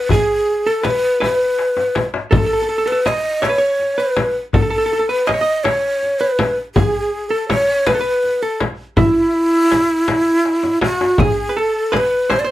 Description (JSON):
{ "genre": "Persian modal ensemble", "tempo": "54 BPM (dotted quarters)", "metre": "6/8", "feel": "straight", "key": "unclear", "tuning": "A4 = 442 Hz", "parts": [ { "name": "breathy ney", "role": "melody", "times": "0.0-12.5 s", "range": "E4 to D#5", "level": "-16 LUFS", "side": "equal", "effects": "none" }, { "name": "hollow-body jazz guitar", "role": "second line", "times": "0.0-12.5 s", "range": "E4 to D#5", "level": "-22 LUFS", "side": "right 4 dB", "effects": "none" }, { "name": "frame drum", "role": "percussion", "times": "0.1-12.5 s", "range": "none", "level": "-19 LUFS", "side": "equal", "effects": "none" }, { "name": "tombak", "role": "percussion", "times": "0.1-12.5 s", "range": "none", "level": "-21 LUFS", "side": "left 4 dB", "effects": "none" } ], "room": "light reverb", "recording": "none", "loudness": "-14 LUFS", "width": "side -14 dB against mid", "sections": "0.0-11.2 A section; 11.2-12.5 B section", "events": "drum fill 1.6-2.3, 10.5-11.2", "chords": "none" }